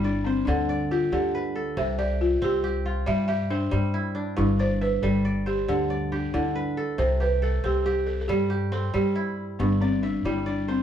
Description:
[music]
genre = west african traditional, West African string and xylophone music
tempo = 92 BPM (dotted quarters)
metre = 12/8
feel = straight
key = C major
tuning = A4 = 440 Hz
[part]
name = balafon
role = melody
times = 0.0-10.8 s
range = B3 to E5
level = -27 LUFS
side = equal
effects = none
[part]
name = kora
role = arpeggios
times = 0.0-10.8 s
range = G2 to E5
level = -27 LUFS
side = equal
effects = none
[part]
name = upright bass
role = bass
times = 0.0-10.8 s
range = G1 to G2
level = -28 LUFS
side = equal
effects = none
[sound]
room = moderate large studio reverb, RT60 0.9 s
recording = band playing live in one room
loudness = -23 LUFS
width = side -9 dB against mid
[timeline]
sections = 0.0-10.8 A section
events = none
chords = 0.0 G; 1.8 C; 4.4 G; 7.0 C; 9.6 G5

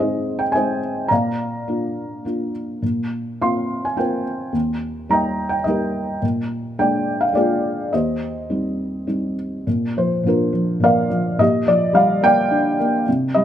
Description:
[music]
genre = classical, lyrical solo piano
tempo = 106 BPM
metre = 3/4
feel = rubato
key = Eb major, Bb major from 9.7 s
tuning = A4 = 441 Hz
[part]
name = felt-muted upright piano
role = solo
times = 0.0-13.4 s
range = Eb2 to C6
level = -18 LUFS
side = equal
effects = none
[sound]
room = light reverb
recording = close, detailed microphones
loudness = -18 LUFS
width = side -10 dB against mid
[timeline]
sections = 0.0-9.7 A section; 9.7-13.4 B section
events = none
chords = 0.0 Ab; 1.1 Bb; 2.8 Bbsus2; 4.5 Eb; 6.2 Bb7; 7.9 Eb6; 9.7 Bb; 11.4 Gm7/Bb

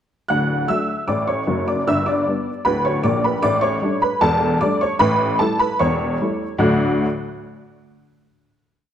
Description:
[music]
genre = ragtime piano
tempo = 76 BPM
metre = 2/4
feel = straight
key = D major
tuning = A4 = 436 Hz
[part]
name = honky-tonk upright piano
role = solo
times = 0.3-7.0 s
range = D1 to F#6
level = -17 LUFS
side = equal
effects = none
[sound]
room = moderate scoring stage reverb, RT60 1.6 s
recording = close, detailed microphones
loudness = -17 LUFS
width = side -9 dB against mid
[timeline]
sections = 0.3-6.6 A section; 6.6-8.2 final chord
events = none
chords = 0.3 D; 1.9 G; 3.4 A7sus4; 5.0 A7; 6.6 D

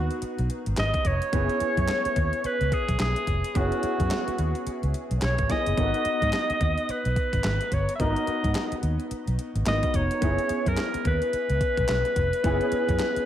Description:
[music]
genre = R&B, new jack swing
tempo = 108 BPM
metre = 4/4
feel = swing 60% on 16ths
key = unclear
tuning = A4 = 440 Hz
[part]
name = bright alto saxophone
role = melody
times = 0.0-13.3 s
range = F#4 to E5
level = -27 LUFS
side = equal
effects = tape echo
[part]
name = clear concert grand piano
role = accompaniment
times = 0.0-13.3 s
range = B3 to B4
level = -31 LUFS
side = left 1 dB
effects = ensemble chorus
[part]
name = vintage muted fingered electric bass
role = bass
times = 0.0-13.2 s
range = E#1 to G#2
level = -27 LUFS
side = equal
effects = none
[part]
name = clean 12-bit digital drum machine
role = drums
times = 0.1-13.3 s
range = handclaps, hi-hat, kick drum, snare drum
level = -29 LUFS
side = equal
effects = overdrive
[sound]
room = wet plate reverb, RT60 1.1 s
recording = dreamy mix soaked in reverb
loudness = -23 LUFS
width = side -11 dB against mid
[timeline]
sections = 0.0-13.3 A section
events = grand piano fill 13.0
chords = 0.0 G#m9; 1.3 F#7sus4; 5.8 G#m9; 10.2 F#7sus4

